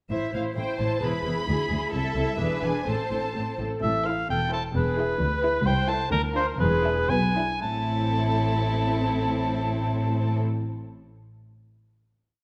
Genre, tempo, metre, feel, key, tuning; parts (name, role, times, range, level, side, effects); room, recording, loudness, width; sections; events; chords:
quick classical-period movement for symphony orchestra; 114-133 BPM; 2/4; rubato; A minor; A4 = 440 Hz
muted studio violin section; melody; 0.1-10.4 s; G#4 to B5; -38 LUFS; equal
muted studio viola section; accompaniment; 0.1-10.4 s; C4 to C5; -34 LUFS; equal
muted studio cello section; bass; 0.1-10.4 s; C2 to B2; -32 LUFS; equal
muted studio double bass section; bass; 0.1-10.4 s; E1 to D2; -32 LUFS; equal
muted studio violin section; second line; 0.6-10.4 s; D4 to C5; -36 LUFS; equal
warm cor anglais; second line; 3.8-10.4 s; Bb4 to A5; -29 LUFS; equal
moderate concert hall reverb, RT60 1.7 s; -26 LUFS; mono
0.1-3.8 A section; 3.8-7.6 A section; 7.6-9.6 final chord
slowing down 5.2-7.6
0.1 Am; 1.0 E; 1.5 E7/D; 1.9 Am/C; 2.4 E7; 2.9 Am; 4.8 E; 5.2 E7/D; 5.7 Am/C; 6.1 Bb/D; 6.6 E7; 7.6 Am